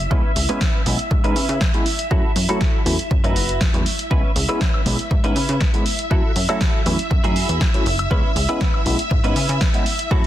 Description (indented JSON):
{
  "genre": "filtered disco house",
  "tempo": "120 BPM",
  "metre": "4/4",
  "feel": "straight",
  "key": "C# minor",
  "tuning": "A4 = 441 Hz",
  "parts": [
    { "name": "string machine, full ensemble", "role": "sustained chords", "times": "0.0-10.3 s", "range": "E5", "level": "-27 LUFS", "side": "equal", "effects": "ensemble chorus, sidechain pumping, low-pass filter" },
    { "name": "plucky analog bass", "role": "bass", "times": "0.0-10.2 s", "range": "F#1 to C#3", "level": "-23 LUFS", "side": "equal", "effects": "sidechain pumping, low-pass filter" },
    { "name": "overdriven tine electric piano", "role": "accompaniment", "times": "0.1-10.2 s", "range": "F#3 to E4", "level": "-26 LUFS", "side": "equal", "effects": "phaser, sidechain pumping, low-pass filter" },
    { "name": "direct-recorded clean electric guitar", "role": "riff", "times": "0.1-10.3 s", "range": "C#4 to B4", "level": "-27 LUFS", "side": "right 1 dB", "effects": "ensemble chorus, sidechain pumping, low-pass filter" },
    { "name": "electronic kick drum", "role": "drums", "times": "0.1-10.2 s", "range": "none", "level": "-20 LUFS", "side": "equal", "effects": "none" },
    { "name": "punchy analog drum machine", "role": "drums", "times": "0.4-10.3 s", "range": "hi-hat, snare drum, woodblock", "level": "-25 LUFS", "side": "equal", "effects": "sidechain pumping on hats, sidechain pumping on perc" }
  ],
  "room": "little or no reverb",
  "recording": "dense, heavily limited modern master",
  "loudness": "-16 LUFS",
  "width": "side -12 dB against mid",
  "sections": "0.0-10.3 A section",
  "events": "filter sweep 0.0-10.3",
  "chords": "0.1 C#m7; 2.1 F#m7; 4.1 C#m7; 6.1 F#m7; 8.1 C#m7",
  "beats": "| 0.11 0.61 1.11 1.61 | 2.11 2.61 3.11 3.61 | 4.11 4.61 5.11 5.61 | 6.11 6.61 7.11 7.61 | 8.11 8.61 9.11 9.61 | 10.11"
}